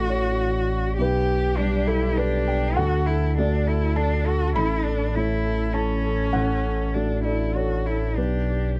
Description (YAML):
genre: neoclassical piano and strings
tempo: 100 BPM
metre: 3/4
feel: rubato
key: unclear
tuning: A4 = 440 Hz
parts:
  - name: rich cello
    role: second line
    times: 0.0-8.7 s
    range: C#4 to G4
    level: -30 LUFS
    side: equal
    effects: none
  - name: dark viola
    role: accompaniment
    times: 0.0-8.8 s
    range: F#4 to A4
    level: -33 LUFS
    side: equal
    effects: none
  - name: felt-muted upright piano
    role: accompaniment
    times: 0.0-8.8 s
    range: A1 to B5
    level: -28 LUFS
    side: equal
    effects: none
  - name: sub bass with octave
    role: bass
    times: 0.0-8.8 s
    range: A1 to D2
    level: -28 LUFS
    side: equal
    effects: none
room: little or no reverb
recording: dry, close 1970s-style studio recording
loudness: -23 LUFS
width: mono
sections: 0.0-8.8 A section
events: none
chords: 0.0 D/A; 1.0 G/B; 2.8 D; 4.6 Aadd9; 6.3 D/A; 8.2 G/B